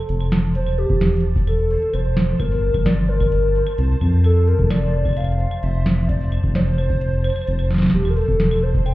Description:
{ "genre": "IDM", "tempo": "130 BPM", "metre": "4/4", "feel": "straight", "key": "F major", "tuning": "A4 = 440 Hz", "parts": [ { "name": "warbly nostalgic lead", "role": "melody", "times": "0.0-8.9 s", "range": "G4 to G5", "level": "-24 LUFS", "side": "equal", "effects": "chorus, ping-pong delay" }, { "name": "bubbling stepped-filter texture", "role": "texture", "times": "0.0-8.9 s", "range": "C5 to A5", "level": "-37 LUFS", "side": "right 2 dB", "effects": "chorus, built-in reverb" }, { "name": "round analog bass", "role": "bass", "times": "0.1-8.9 s", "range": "E1 to F2", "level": "-18 LUFS", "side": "equal", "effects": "none" }, { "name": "electro analog drum machine", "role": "drums", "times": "0.1-8.9 s", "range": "claves, hi-hat, snare drum", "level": "-23 LUFS", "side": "right 1 dB", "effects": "none" }, { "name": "electronic kick drum", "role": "drums", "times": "0.9-8.8 s", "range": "none", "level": "-23 LUFS", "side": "equal", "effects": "none" } ], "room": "light reverb, digital ambience", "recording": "heard muffled through a wall, club reverb, EQ", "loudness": "-16 LUFS", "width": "side -17 dB against mid", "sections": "0.0-8.9 A section", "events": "none", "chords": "0.0 F; 0.6 C/E; 2.4 Gm7; 4.2 F6; 7.9 C/E" }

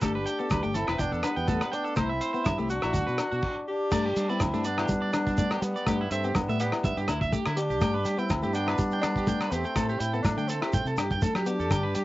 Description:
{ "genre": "highlife guitar band", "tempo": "123 BPM", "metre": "4/4", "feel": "swing 53% on 16ths", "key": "G major", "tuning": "A4 = 442 Hz", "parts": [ { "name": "breathy tenor saxophone", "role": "melody", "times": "0.0-12.0 s", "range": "B3 to G4", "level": "-32 LUFS", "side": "equal", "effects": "cassette tape" }, { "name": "clear trombone", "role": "second line", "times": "0.0-12.0 s", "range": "G3 to D4", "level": "-36 LUFS", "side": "left 2 dB", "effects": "cassette tape" }, { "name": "semi-hollow electric guitar", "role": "accompaniment", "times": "0.0-11.9 s", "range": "D3 to E4", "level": "-34 LUFS", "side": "left 4 dB", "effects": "spring reverb, cassette tape" }, { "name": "electric guitar at the edge of break-up", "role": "arpeggios", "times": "0.0-12.0 s", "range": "D4 to G5", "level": "-33 LUFS", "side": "right 4 dB", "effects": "cassette tape" }, { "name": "fingered electric bass", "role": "bass", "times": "0.0-12.0 s", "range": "E1 to G3", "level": "-31 LUFS", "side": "equal", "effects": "none" }, { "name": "cloth-damped thuddy drum kit", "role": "drums", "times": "0.0-12.0 s", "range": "crash cymbal, hi-hat, kick drum, rim click", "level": "-32 LUFS", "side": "equal", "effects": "none" }, { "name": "agogo bells", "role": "percussion", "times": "0.0-11.8 s", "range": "none", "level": "-38 LUFS", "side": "left 4 dB", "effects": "none" }, { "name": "congas", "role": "percussion", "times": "0.0-11.8 s", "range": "none", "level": "-36 LUFS", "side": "right 1 dB", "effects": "none" }, { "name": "shekere", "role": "percussion", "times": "0.0-12.0 s", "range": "none", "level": "-36 LUFS", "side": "right 1 dB", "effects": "none" } ], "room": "light reverb", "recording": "home recording on cassette, nothing above 7.7 kHz", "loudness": "-25 LUFS", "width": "side -17 dB against mid", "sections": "0.0-3.9 A section; 3.9-12.0 B section", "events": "none", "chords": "0.0 Gadd9; 2.0 C; 2.9 D6; 3.9 G; 5.9 Em7/G; 7.8 G; 9.8 Am7" }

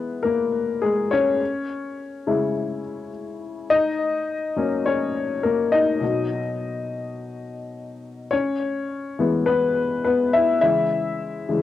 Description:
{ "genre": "pop", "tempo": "104 BPM", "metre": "4/4", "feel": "straight", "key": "B major", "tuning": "A4 = 439 Hz", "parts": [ { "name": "warm upright piano", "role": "solo", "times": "0.0-11.6 s", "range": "B2 to E5", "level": "-21 LUFS", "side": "left 3 dB", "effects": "cassette tape, analog delay" } ], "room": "wet booth ambience, RT60 0.2 s", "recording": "home recording on cassette", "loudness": "-20 LUFS", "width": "side -12 dB against mid", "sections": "0.0-11.6 A section", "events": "upright piano solo 0.0-11.6", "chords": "0.0 E; 1.4 C#m; 3.7 F#; 6.0 B; 8.3 E; 10.6 C#m" }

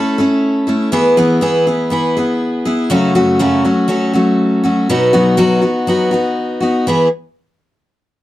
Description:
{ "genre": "country", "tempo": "121 BPM", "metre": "4/4", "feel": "straight", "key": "E major", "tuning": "A4 = 439 Hz", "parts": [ { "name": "picked steel-string acoustic guitar", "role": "solo", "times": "0.0-7.1 s", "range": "F#2 to A4", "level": "-12 LUFS", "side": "equal", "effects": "none" } ], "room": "light reverb", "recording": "dry, close 1970s-style studio recording", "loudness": "-12 LUFS", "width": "side -15 dB against mid", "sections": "0.0-6.9 A section; 6.9-8.2 B section", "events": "none", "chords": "0.0 A; 0.9 E; 2.9 F#m; 4.9 B; 6.9 E" }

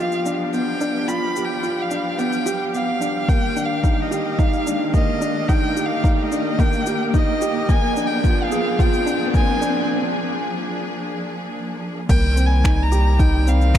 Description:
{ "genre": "piano and strings electronica", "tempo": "109 BPM", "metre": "4/4", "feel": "straight", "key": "C minor", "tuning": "A4 = 440 Hz", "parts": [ { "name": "rich violin", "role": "melody", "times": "0.0-13.8 s", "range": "Eb5 to B5", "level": "-25 LUFS", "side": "equal", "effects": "none" }, { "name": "clear studio string section", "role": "sustained chords", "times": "0.0-13.8 s", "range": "Eb3 to F5", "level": "-29 LUFS", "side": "equal", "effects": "none" }, { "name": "felt-muted upright piano", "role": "riff", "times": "0.0-13.8 s", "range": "Bb3 to Ab4", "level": "-23 LUFS", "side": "equal", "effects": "none" }, { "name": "riser", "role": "sound effects", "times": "0.7-9.9 s", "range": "none", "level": "-30 LUFS", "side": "equal", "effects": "none" }, { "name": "deep house drum kit", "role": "drums", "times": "0.1-13.8 s", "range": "crash cymbal, finger snaps, shaker", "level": "-33 LUFS", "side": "left 3 dB", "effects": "high-pass filter on perc, high-pass filter on cymbals, high-pass filter on snare, high-pass filter on room" }, { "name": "electronic kick drum", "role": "drums", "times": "3.3-13.8 s", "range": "none", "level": "-18 LUFS", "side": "equal", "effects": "none" }, { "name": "round analog bass", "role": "bass", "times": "12.1-13.8 s", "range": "C2", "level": "-16 LUFS", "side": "equal", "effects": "sidechain pumping" } ], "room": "moderate huge ambient reverb, RT60 5.1 s", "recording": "dark, warm production", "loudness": "-18 LUFS", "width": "side -10 dB against mid", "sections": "0.0-12.1 A section; 12.1-13.8 B section", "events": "build-up 0.0-12.1; riser 0.7-9.9; break 9.9-12.1; drop 12.1-13.8", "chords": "0.0 G7; 3.3 Ebmaj7; 7.7 Bb7; 12.1 Cm7" }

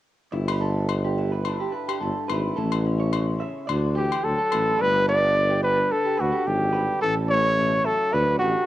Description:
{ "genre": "highlife guitar band", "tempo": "108 BPM", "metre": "4/4", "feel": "swing 55% on 16ths", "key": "G major", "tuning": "A4 = 440 Hz", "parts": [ { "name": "picked old ladder-braced acoustic guitar", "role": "accompaniment", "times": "0.3-8.7 s", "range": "F#2 to G4", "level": "-35 LUFS", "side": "left 7 dB", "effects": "cassette tape" }, { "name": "electric guitar at the edge of break-up", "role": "arpeggios", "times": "0.3-8.7 s", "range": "G4 to E5", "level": "-32 LUFS", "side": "right 7 dB", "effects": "cassette tape, tape echo" }, { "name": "mellow tuba", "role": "bass", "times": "0.3-8.5 s", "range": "G1 to D2", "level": "-25 LUFS", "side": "equal", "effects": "none" }, { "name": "agogo bells", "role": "percussion", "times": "0.5-4.7 s", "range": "none", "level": "-33 LUFS", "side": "left 10 dB", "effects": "none" }, { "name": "warm trumpet", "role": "melody", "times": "4.0-8.7 s", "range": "F#4 to D5", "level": "-21 LUFS", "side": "equal", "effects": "cassette tape" }, { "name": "clear alto saxophone", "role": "second line", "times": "4.0-8.7 s", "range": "D3 to B3", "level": "-35 LUFS", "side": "left 8 dB", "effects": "none" } ], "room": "light reverb", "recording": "home recording on cassette", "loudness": "-21 LUFS", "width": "side -14 dB against mid", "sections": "0.3-4.8 A section; 4.8-8.7 B section", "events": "none", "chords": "0.3 G; 2.6 A; 3.7 D; 4.8 G; 7.0 A; 8.1 D" }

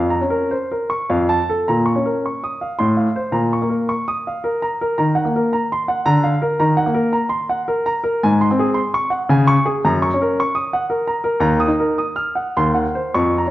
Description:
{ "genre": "classical, baroque-style suite movement for grand piano", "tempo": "98-114 BPM", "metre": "3/4", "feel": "rubato", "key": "Bb minor", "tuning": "A4 = 440 Hz", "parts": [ { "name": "clear baby grand piano", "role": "solo", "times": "0.0-13.5 s", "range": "Eb2 to F6", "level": "-16 LUFS", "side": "equal", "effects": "none" } ], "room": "moderate recital hall reverb, RT60 1.4 s", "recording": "worn, warbling old tape, cassette tape, warbly pitch drift", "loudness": "-16 LUFS", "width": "side -15 dB against mid", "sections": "0.0-1.7 A section; 1.7-13.5 A section", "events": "none", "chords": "0.0 Bbm/F; 1.1 F; 1.7 Bbm; 2.8 F/A; 3.3 Bbm; 5.0 Ebm; 6.1 Bb/D; 6.6 Ebm; 8.2 Ab7; 9.3 Db5; 9.8 Gb; 11.4 Ebm; 12.5 Cdim/Eb" }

